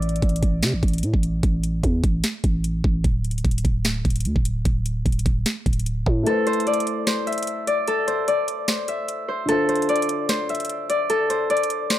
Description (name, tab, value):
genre	hip hop, trap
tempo	149 BPM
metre	4/4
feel	half-time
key	A minor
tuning	A4 = 440 Hz
part	Celtic harp	melody	0.0-1.5, 6.3-12.0 s	A4 to E5	-22 LUFS	left 2 dB	tape echo
part	growling 808-style bass	bass	0.0-6.3 s	D1 to C3	-23 LUFS	equal	none
part	trap drum kit	drums	0.0-12.0 s	hi-hat, kick drum, snare drum	-23 LUFS	equal	none
part	dark concert grand piano	accompaniment	6.2-12.0 s	D3 to C5	-28 LUFS	equal	none
room	studio reverb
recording	dry, gritty hardware recording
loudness	-20 LUFS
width	side -13 dB against mid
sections	0.0-12.0 A section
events	break 0.0-6.3; kick muted 6.3-12.0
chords	0.0 Am; 3.0 D5; 6.3 Amadd9; 9.5 Dm7